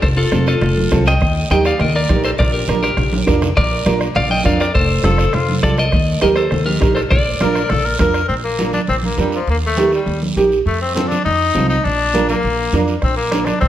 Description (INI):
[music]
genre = latin, cumbia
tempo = 203 BPM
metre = 4/4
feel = straight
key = Bb major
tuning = A4 = 442 Hz
[part]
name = clean electric guitar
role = melody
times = 0.0-8.0 s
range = F4 to G5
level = -19 LUFS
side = left 2 dB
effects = spring reverb
[part]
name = upright bass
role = bass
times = 0.0-13.7 s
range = F1 to F2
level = -19 LUFS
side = equal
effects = none
[part]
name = bombo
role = percussion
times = 0.0-8.3, 13.0-13.7 s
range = none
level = -21 LUFS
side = equal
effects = none
[part]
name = guiro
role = percussion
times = 0.0-13.7 s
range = none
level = -30 LUFS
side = right 4 dB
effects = none
[part]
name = nylon-string guitar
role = accompaniment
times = 0.3-13.5 s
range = C4 to Bb4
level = -20 LUFS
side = right 4 dB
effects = none
[part]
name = congas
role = percussion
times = 0.3-13.7 s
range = none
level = -23 LUFS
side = right 3 dB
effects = none
[part]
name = breathy tenor saxophone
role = second line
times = 5.0-13.7 s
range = F3 to Bb4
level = -19 LUFS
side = left 4 dB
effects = none
[sound]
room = moderate large studio reverb, RT60 1.3 s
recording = none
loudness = -14 LUFS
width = side -12 dB against mid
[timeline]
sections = 0.0-8.3 A section; 8.3-13.7 B section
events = drum fill 3.1-3.6; tenor saxophone solo 8.3-13.7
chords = 0.0 F; 1.2 Eb; 2.4 Bb; 4.8 F; 5.9 Eb; 7.1 Bb; 9.5 Eb; 10.7 F7; 11.8 Bb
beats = | 0.03 0.33 0.62 0.92 | 1.21 1.51 1.80 2.10 | 2.39 2.69 2.98 3.28 | 3.57 3.87 4.16 4.46 | 4.75 5.05 5.34 5.64 | 5.93 6.23 6.52 6.82 | 7.11 7.41 7.70 8.00 | 8.29 8.59 8.89 9.18 | 9.48 9.77 10.07 10.37 | 10.66 10.96 11.25 11.55 | 11.85 12.14 12.44 12.73 | 13.03 13.32 13.62